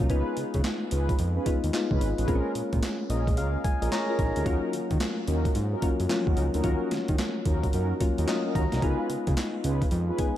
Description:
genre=R&B, new jack swing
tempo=110 BPM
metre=4/4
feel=swing 64% on 16ths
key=Eb minor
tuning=A4 = 438 Hz
part: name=soft electric-piano-like synth keys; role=accompaniment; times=0.0-10.4 s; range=F3 to Bb5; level=-30 LUFS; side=left 3 dB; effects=chorus
part: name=fat analog bass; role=bass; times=0.0-10.1 s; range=Ab1 to Eb3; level=-28 LUFS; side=equal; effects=none
part: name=boom bap sampler-style drum kit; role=drums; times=0.0-10.4 s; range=handclaps, hi-hat, kick drum, snare drum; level=-28 LUFS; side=right 1 dB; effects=overdrive
part: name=mellow synth brass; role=stabs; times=0.1-10.3 s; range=Db4 to Cb5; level=-33 LUFS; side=right 1 dB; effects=chorus, analog delay
room=light reverb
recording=none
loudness=-24 LUFS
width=side -12 dB against mid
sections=0.1-10.4 A section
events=synth keys fill 2.8-4.5, 8.0-8.8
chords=0.1 Db7; 2.3 Bbm7; 4.5 Ebm7; 8.8 Db7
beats=| 0.10 0.64 1.19 1.73 | 2.28 2.82 3.37 3.91 | 4.46 5.00 5.55 6.10 | 6.64 7.19 7.73 8.28 | 8.82 9.37 9.91

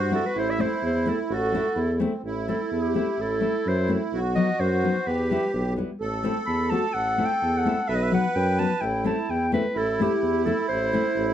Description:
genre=klezmer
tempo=128 BPM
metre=2/4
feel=straight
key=A dorian sharp4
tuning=A4 = 440 Hz
part: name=warm clarinet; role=melody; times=0.0-11.3 s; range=G4 to B5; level=-27 LUFS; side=left 1 dB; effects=plate reverb
part: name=accordion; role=second line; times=0.0-11.3 s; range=C4 to B4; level=-29 LUFS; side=right 5 dB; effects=light tremolo tuning
part: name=mellow tuba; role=bass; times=0.0-11.3 s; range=A1 to G2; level=-27 LUFS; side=equal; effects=none
part: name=nylon-string guitar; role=accompaniment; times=0.1-11.0 s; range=F#3 to F#4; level=-27 LUFS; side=left 4 dB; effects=none
room=moderate small room reverb, RT60 0.5 s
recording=dark, warm production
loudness=-22 LUFS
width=side -10 dB against mid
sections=0.0-2.2 A section; 2.2-9.8 B section; 9.8-11.3 C section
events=clarinet solo 2.2-9.8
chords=0.3 Am; 4.1 B; 5.1 Em; 6.0 Am; 7.9 B; 8.8 Am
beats=| 0.34 0.81 | 1.29 1.76 | 2.24 2.71 | 3.18 3.66 | 4.13 4.60 | 5.07 5.54 | 6.01 6.48 | 6.95 7.42 | 7.89 8.36 | 8.82 9.29 | 9.75 10.22 | 10.68 11.14

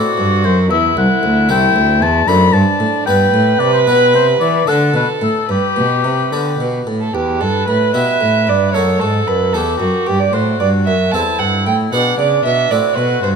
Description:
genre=classical, baroque-style sonata movement with continuo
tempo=75 BPM (dotted quarters)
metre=6/8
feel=straight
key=G major, E minor from 7.1 s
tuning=A4 = 438 Hz
part: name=warm oboe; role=melody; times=0.0-13.4 s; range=D4 to B5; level=-18 LUFS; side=left 9 dB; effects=none
part: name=dark violin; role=second line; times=0.0-13.3 s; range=D4 to A5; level=-17 LUFS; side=right 6 dB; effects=none
part: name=harpsichord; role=accompaniment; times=0.0-13.4 s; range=C2 to C5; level=-20 LUFS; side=left 2 dB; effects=none
part: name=rich cello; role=bass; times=0.2-13.4 s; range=C2 to E3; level=-17 LUFS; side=right 1 dB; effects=none
room=moderate recital hall reverb, RT60 1.6 s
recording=close, detailed microphones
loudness=-12 LUFS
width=side -6 dB against mid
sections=0.0-7.1 A section; 7.1-13.4 A section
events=none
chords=0.0 Am; 0.7 C; 2.3 D7/F#; 3.1 G; 3.9 G/B; 4.7 D5; 5.5 G; 7.1 Em; 8.7 D#dim/F#; 9.5 Em; 10.3 Am; 11.9 G#dim/B; 12.7 Am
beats=| 0.71 1.50 | 2.28 3.07 | 3.87 4.68 | 5.49 6.32 | 7.15 7.95 | 8.75 9.54 | 10.33 11.13 | 11.93 12.71

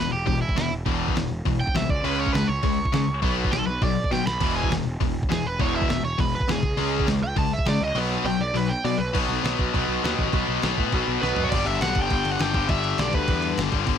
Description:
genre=punk rock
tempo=203 BPM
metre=4/4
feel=straight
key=unclear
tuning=A4 = 440 Hz
part: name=crunchy overdriven guitar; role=melody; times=0.0-9.1, 11.2-13.6 s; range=E4 to B5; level=-27 LUFS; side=right 3 dB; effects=none
part: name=raw garage guitar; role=riff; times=0.0-11.5 s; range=E2 to C#4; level=-30 LUFS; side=right 13 dB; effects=overdrive
part: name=tight distorted guitar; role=riff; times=0.0-14.0 s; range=E2 to C#4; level=-26 LUFS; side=left 14 dB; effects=distortion
part: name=fuzz picked electric bass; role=bass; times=0.0-14.0 s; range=E1 to C#3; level=-29 LUFS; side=equal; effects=overdrive
part: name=dusty soul sampler-style drum kit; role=drums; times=0.3-13.9 s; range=crash cymbal, hi-hat, kick drum, snare drum, toms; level=-27 LUFS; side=equal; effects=none
room=little or no reverb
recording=none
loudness=-21 LUFS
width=side -8 dB against mid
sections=0.0-9.2 A section; 9.2-11.5 B section; 11.5-14.0 C section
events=overdriven electric guitar solo 0.0-9.2; drum fill 4.1, 11.2; kick and snare drop out 8.0-9.2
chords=0.0 E5; 1.9 C#5; 3.2 B5; 4.4 E5; 6.6 C#5; 8.0 B5; 11.5 G5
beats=0.28 0.57 | 0.87 1.16 1.46 1.75 | 2.05 2.35 2.64 2.94 | 3.23 3.53 3.82 4.12 | 4.41 4.71 5.01 5.30 | 5.60 5.89 6.19 6.49 | 6.78 7.08 7.37 7.67 | 7.96 8.26 8.56 8.85 | 9.15 9.45 9.74 10.04 | 10.33 10.63 10.93 11.22 | 11.52 11.81 12.11 12.40 | 12.70 12.99 13.29 13.58 | 13.87

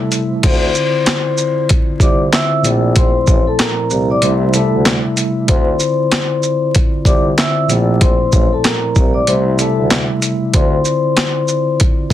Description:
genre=hip hop, boom-bap hip-hop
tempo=95 BPM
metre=4/4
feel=swing 60% on 16ths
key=D minor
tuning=A4 = 439 Hz
part: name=mellow tine electric piano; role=accompaniment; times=0.0-12.1 s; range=Bb2 to E5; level=-18 LUFS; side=right 1 dB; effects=medium stereo tremolo, cassette tape, high-pass filter, low-pass filter
part: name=boom bap sampler-style drum kit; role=drums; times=0.1-12.1 s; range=crash cymbal, handclaps, hi-hat, kick drum, shaker, snare drum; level=-14 LUFS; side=equal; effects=none
part: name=vibraphone with soft mallets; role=melody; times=0.4-11.8 s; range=A4 to E6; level=-18 LUFS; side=left 4 dB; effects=high-pass filter, low-pass filter, ping-pong delay
part: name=warm tuba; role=bass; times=0.4-12.1 s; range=A1 to D2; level=-18 LUFS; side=right 1 dB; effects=none
room=light reverb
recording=dense, heavily limited modern master, vinyl crackle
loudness=-12 LUFS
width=side -12 dB against mid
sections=0.4-12.1 A section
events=break 0.0-0.4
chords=0.4 Dm9; 2.6 Bbmaj9#11; 4.2 Am7/C; 5.5 Dm9; 7.7 Bbmaj9#11; 9.3 Am7/C; 10.5 Dm9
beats=| 0.43 1.07 1.70 2.33 | 2.96 3.59 4.22 4.86 | 5.49 6.12 6.75 7.38 | 8.01 8.64 9.28 9.91 | 10.54 11.17 11.80

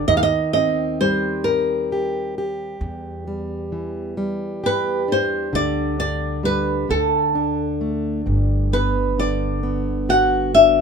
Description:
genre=folk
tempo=44 BPM (dotted quarters)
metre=6/8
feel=straight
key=G major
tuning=A4 = 443 Hz
part: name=flamenco guitar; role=melody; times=0.0-10.8 s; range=A4 to F#5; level=-19 LUFS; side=equal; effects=none
part: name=fingerpicked plugged-in steel-string acoustic guitar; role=accompaniment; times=0.0-10.8 s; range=E2 to G4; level=-23 LUFS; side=equal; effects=none
part: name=upright bass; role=bass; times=0.0-10.8 s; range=G1 to E2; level=-27 LUFS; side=equal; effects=none
room=light reverb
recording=minimal, uncompressed stereo recording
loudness=-18 LUFS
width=side -6 dB against mid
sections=0.0-10.8 A section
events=none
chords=0.1 Eb6; 2.8 Em7; 5.5 Dsus4; 6.9 D5; 8.3 Gmaj7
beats=| 0.08 1.44 | 2.80 4.16 | 5.52 6.89 | 8.26 9.62

